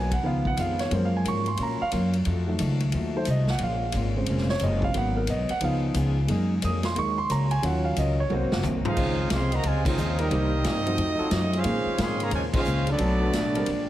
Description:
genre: jazz, big band swing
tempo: 179 BPM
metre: 4/4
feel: swing 64% on 8ths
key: Db major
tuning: A4 = 440 Hz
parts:
  - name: picked acoustic archtop guitar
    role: accompaniment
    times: 0.0-13.9 s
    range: Ab2 to Ab4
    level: -34 LUFS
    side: left 3 dB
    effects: none
  - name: warm grand piano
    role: accompaniment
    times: 0.0-13.7 s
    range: Db3 to Eb6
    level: -28 LUFS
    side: right 2 dB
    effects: none
  - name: upright bass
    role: bass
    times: 0.0-13.9 s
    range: F1 to Bb2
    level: -26 LUFS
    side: equal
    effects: none
  - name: swinging big-band drum kit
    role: drums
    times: 0.1-13.8 s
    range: crash cymbal, hi-hat, kick drum, ride cymbal, snare drum, toms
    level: -32 LUFS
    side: equal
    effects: none
  - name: clear trombone section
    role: second line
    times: 8.8-13.9 s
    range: C3 to F4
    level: -30 LUFS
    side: right 1 dB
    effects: none
  - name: warm trumpet section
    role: melody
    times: 8.9-13.9 s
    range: Cb4 to C6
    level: -29 LUFS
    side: right 1 dB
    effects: none
  - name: warm trombone section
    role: sustained chords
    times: 10.2-13.3 s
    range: Gb3 to C5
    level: -36 LUFS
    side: left 1 dB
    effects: none
room: light reverb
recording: heavily compressed radio sound, multiband compression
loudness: -23 LUFS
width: side -13 dB against mid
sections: 0.0-9.0 A section; 9.0-13.9 B section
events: grand piano solo 0.0-9.0; drum fill 8.3-9.0; band accent 9.8, 12.5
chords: 0.2 Db7; 0.9 Gbmaj7; 2.3 F7b9; 3.6 Bbm7; 4.9 Abm7; 5.6 Db7; 6.3 Gb69; 7.6 Ebm9; 8.3 Ab7; 9.0 Dbmaj9; 10.3 Cm7; 11.0 F7b9; 11.7 Bbm11; 13.0 Cbm7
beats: 0.25 0.58 | 0.92 1.26 1.59 1.93 | 2.26 2.60 2.94 3.27 | 3.61 3.94 4.28 4.61 | 4.95 5.28 5.62 5.95 | 6.29 6.62 6.96 7.29 | 7.63 7.96 8.30 8.63 | 8.97 9.30 9.64 9.97 | 10.31 10.65 10.98 11.32 | 11.65 11.99 12.33 12.66 | 13.00 13.34 13.67

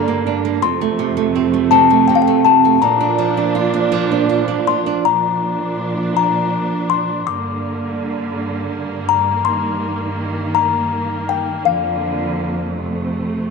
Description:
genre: children's music, lullaby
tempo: 54 BPM (dotted quarters)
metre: 6/8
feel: straight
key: Bb major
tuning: A4 = 441 Hz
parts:
  - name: music box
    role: melody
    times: 0.0-13.5 s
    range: F5 to D6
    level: -17 LUFS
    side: left 12 dB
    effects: none
  - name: flamenco guitar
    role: accompaniment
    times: 0.0-5.0 s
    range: F2 to F4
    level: -16 LUFS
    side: right 13 dB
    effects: none
  - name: rich studio string section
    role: sustained chords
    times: 0.0-13.5 s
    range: F2 to D4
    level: -21 LUFS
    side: right 2 dB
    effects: none
room: moderate plate reverb, RT60 2.9 s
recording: 1960s-style stereo with parts hard left and right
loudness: -15 LUFS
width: side -4 dB against mid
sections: 0.0-5.1 A section; 5.1-13.5 B section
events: none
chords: 0.0 Gm; 0.6 F; 2.8 Bb; 7.3 Gm; 9.4 Eb/G; 11.7 Bb/F; 12.8 F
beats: | 0.63 1.72 | 2.82 3.93 | 5.05 6.16 | 7.26 8.36 | 9.45 10.54 | 11.65 12.76

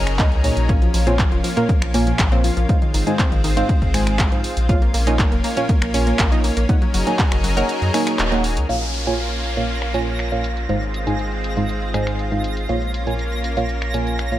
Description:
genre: progressive house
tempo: 120 BPM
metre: 4/4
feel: straight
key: Bb minor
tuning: A4 = 440 Hz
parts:
  - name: lush unison pad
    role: sustained chords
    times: 0.0-14.4 s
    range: Gb3 to Bb4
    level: -26 LUFS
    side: left 1 dB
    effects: chorus, sidechain pumping
  - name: analog pluck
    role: arpeggios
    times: 0.0-8.6 s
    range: Eb3 to Bb4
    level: -25 LUFS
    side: equal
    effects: chorus, sidechain pumping, tape echo
  - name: round analog bass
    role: bass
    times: 0.0-14.4 s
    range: Eb1 to Gb2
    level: -22 LUFS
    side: equal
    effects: sidechain pumping
  - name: deep house drum kit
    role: drums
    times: 0.1-14.4 s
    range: crash cymbal, finger snaps, handclaps, hi-hat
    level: -26 LUFS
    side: equal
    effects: overdrive, low-pass filter on hats, low-pass filter on snare, low-pass filter on cymbals
  - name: deep mellow chord stab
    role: stabs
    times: 0.2-14.4 s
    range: Ab2 to Bb5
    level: -23 LUFS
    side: right 2 dB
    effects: chorus, cassette tape, sidechain pumping, tape echo
  - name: electronic kick drum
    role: drums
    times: 0.2-7.3 s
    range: none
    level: -18 LUFS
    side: equal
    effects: overdrive
  - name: downlifter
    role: sound effects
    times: 8.7-12.7 s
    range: none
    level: -31 LUFS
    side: equal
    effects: none
  - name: twinkling granular texture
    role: texture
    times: 9.2-14.4 s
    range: Bb6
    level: -33 LUFS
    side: right 2 dB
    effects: built-in reverb, sidechain pumping
room: light reverb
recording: none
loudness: -17 LUFS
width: side -14 dB against mid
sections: 0.0-8.7 A section; 8.7-14.4 B section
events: filter sweep on synth pluck 0.0-8.7; kick drops out 7.7-8.7; band accent 8.2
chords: 0.0 Gb6; 0.7 Bbm; 2.7 Ab6; 4.7 Bbm; 6.7 Gb6; 8.7 Bbm; 10.7 Ab6; 12.7 Bbm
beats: 0.19 | 0.69 1.19 1.69 2.19 | 2.69 3.19 3.69 4.19 | 4.69 5.19 5.69 6.19 | 6.69 7.19 7.69 8.19 | 8.69 9.19 9.69 10.19 | 10.69 11.19 11.69 12.19 | 12.69 13.19 13.69 14.19

